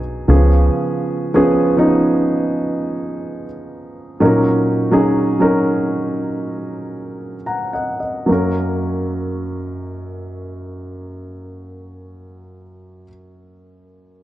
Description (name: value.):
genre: pop ballad.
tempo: 52-71 BPM.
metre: 4/4.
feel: straight.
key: F# major.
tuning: A4 = 440 Hz.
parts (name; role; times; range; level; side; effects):
warm grand piano; accompaniment; 0.0-14.2 s; F#2 to A#5; -17 LUFS; right 1 dB; none.
vintage muted fingered electric bass; bass; 0.0-0.7 s; B1 to C#2; -13 LUFS; equal; none.
room: light reverb, studio ambience.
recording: dark, warm production.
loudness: -15 LUFS.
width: side -14 dB against mid.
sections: 0.0-8.3 A section; 8.3-12.9 B section.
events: slowing down 0.7-8.3.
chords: 0.3 C#7; 4.2 D#m7; 8.3 F#.